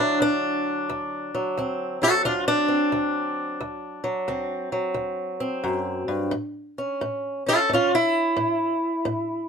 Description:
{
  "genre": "acoustic country blues, solo or duo",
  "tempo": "88 BPM",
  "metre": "4/4",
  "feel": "swing 65% on 8ths",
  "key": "D mixolydian",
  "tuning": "A4 = 440 Hz",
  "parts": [
    { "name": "fingerpicked swing-style acoustic guitar", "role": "solo", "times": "0.0-9.5 s", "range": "D2 to A4", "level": "-22 LUFS", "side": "equal", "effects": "none" }
  ],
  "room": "light reverb",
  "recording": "close, detailed microphones",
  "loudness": "-22 LUFS",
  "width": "side -6 dB against mid",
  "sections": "0.0-9.5 A section",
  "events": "steel-string acoustic guitar solo 0.0-9.5",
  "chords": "0.0 D7; 6.3 A",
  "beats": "0.20 | 0.88 1.56 2.25 2.93 | 3.61 4.29 4.97 5.66 | 6.34 7.02 7.70 8.38 | 9.06"
}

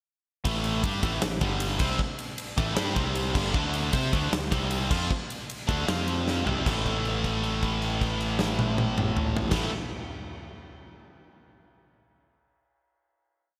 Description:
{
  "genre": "hard rock",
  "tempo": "155 BPM",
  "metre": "4/4",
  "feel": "straight",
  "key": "A minor",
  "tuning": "A4 = 440 Hz",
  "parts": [
    { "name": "distorted electric guitar", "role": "riff", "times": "0.4-9.7 s", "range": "G2 to C5", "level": "-32 LUFS", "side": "equal", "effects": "overdrive" },
    { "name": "fuzz fingered electric bass", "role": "bass", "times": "0.5-9.7 s", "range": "G1 to C3", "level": "-34 LUFS", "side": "equal", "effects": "overdrive" },
    { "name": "huge arena drum kit", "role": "drums", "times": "0.5-9.6 s", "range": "crash cymbal, kick drum, ride cymbal, snare drum, toms", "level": "-32 LUFS", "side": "equal", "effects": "gated reverb" }
  ],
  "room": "moderate lush hall reverb, RT60 2.2 s",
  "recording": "bright 1980s-style digital production",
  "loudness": "-27 LUFS",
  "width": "mono",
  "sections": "0.4-6.7 riff; 6.7-9.7 final chord",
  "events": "drum fill 6.3-6.7; held note 6.7-9.5",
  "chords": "0.4 A5; 1.4 G5; 1.8 Am; 3.0 C5; 3.3 G5; 3.5 D5; 4.5 C5; 4.9 D5; 5.9 F5; 6.5 C5; 6.7 A5",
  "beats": "| 0.45 0.83 1.22 1.60 | 1.99 2.38 2.77 3.15 | 3.54 3.93 4.32 4.71 | 5.10 5.49 5.88 6.26 | 6.65 7.04 7.43 7.82 | 8.20 8.59 8.97 9.36"
}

